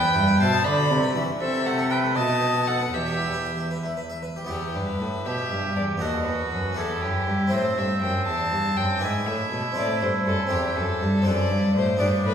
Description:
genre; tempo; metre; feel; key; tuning
classical, baroque-style sonata movement with continuo; 80 BPM (dotted quarters); 6/8; straight; E minor; A4 = 440 Hz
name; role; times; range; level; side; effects
rich violin; melody; 0.0-12.3 s; G4 to B5; -27 LUFS; left 3 dB; none
clear oboe; second line; 0.0-12.3 s; C4 to D#5; -28 LUFS; right 4 dB; none
harpsichord; accompaniment; 0.0-12.3 s; D#2 to E5; -28 LUFS; equal; none
warm cello; bass; 0.0-12.3 s; D#2 to E3; -26 LUFS; equal; none
room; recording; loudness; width
wet recital hall reverb, RT60 1.7 s; recorded in a church or concert hall; -21 LUFS; side -8 dB against mid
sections
0.0-4.5 A section; 4.5-12.3 B section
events
none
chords
0.0 Em; 0.7 Bm; 1.4 Am/C; 2.2 B7; 2.9 Em; 6.0 B7/D#; 6.8 Em; 7.5 Am; 9.0 E7/G#; 9.8 Am; 10.5 C/E; 11.3 D7/F#

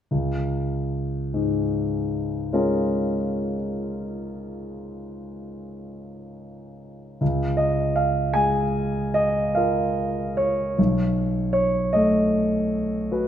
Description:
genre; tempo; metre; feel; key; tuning
classical, impressionist solo piano; 51 BPM (dotted quarters); 9/8; uneven beats, rubato; Db major; A4 = 437 Hz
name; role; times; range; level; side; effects
warm concert grand piano; solo; 0.1-13.3 s; Cb2 to Ab5; -22 LUFS; equal; none
room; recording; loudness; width
moderate recital hall reverb, RT60 1.5 s; dark, warm production; -21 LUFS; side -10 dB against mid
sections
0.1-7.2 A section; 7.2-13.3 B section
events
none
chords
0.1 Db6; 10.8 Cb9

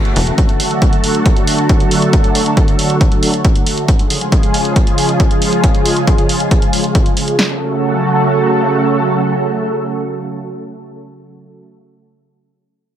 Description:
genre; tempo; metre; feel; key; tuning
uplifting trance; 137 BPM; 4/4; straight; F# minor; A4 = 442 Hz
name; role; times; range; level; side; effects
analog string pad; sustained chords; 0.0-11.7 s; C#3 to A4; -15 LUFS; right 1 dB; ensemble chorus, sidechain pumping
electronic hi-hat; drums; 0.1-7.4 s; none; -21 LUFS; right 1 dB; sidechain pumping on hats
punchy analog drum machine; drums; 0.4-7.5 s; kick drum, snare drum; -12 LUFS; equal; none
room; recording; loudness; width
light reverb; none; -11 LUFS; side -10 dB against mid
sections
0.0-7.4 A section; 7.4-10.9 B section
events
none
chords
0.4 D; 3.9 C#; 7.4 F#m

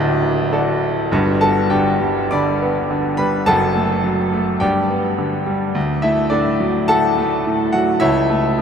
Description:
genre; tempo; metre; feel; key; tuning
classical, virtuoso piano study; 104 BPM; 4/4; uneven beats, rubato; G major; A4 = 438 Hz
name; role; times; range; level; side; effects
bright concert grand piano; solo; 0.0-8.6 s; D1 to D6; -15 LUFS; equal; none
room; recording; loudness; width
wet huge ambient reverb, RT60 9.1 s; in a vast, echoing space; -15 LUFS; side -7 dB against mid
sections
0.0-1.1 A section; 1.1-8.6 B section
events
none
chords
0.0 D; 1.1 G; 3.5 F#m; 4.6 G; 5.8 D; 8.0 A/C#

